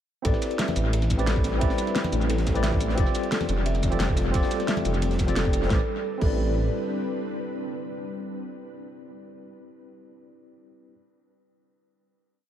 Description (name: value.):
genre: liquid drum and bass.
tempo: 176 BPM.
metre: 4/4.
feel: straight.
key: A minor.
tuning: A4 = 440 Hz.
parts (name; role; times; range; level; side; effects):
barky tine electric piano; accompaniment; 0.2-11.0 s; C4 to D5; -31 LUFS; left 1 dB; medium stereo tremolo, dub echo.
kalimba; arpeggios; 0.2-6.3 s; A4 to E5; -35 LUFS; right 3 dB; analog delay.
dark detuned saw bass; bass; 0.2-6.7 s; F1 to A1; -26 LUFS; equal; none.
crunchy breakbeat drum kit; drums; 0.2-5.7 s; ride cymbal, snare drum; -39 LUFS; equal; high-pass filter on cymbals, small room ambience, high-pass filter on snare, high-pass filter on room.
electronic kick drum; drums; 0.2-6.3 s; none; -26 LUFS; equal; small room ambience.
pop drum kit; drums; 0.2-6.3 s; crash cymbal, hi-hat, shaker, snare drum; -31 LUFS; equal; small room ambience, analog delay.
ethereal airy pad; sustained chords; 1.1-8.8 s; G3 to B4; -34 LUFS; equal; ensemble chorus, built-in reverb, tremolo, sidechain pumping.
congas; percussion; 0.7-5.3 s; none; -35 LUFS; left 3 dB; none.
room: light reverb.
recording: echo-heavy mix.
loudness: -23 LUFS.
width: side -10 dB against mid.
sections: 0.2-5.7 drop; 5.7-8.4 final chord.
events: drop 0.2-5.7.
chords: 0.2 Am11; 3.0 F69; 5.7 Am11.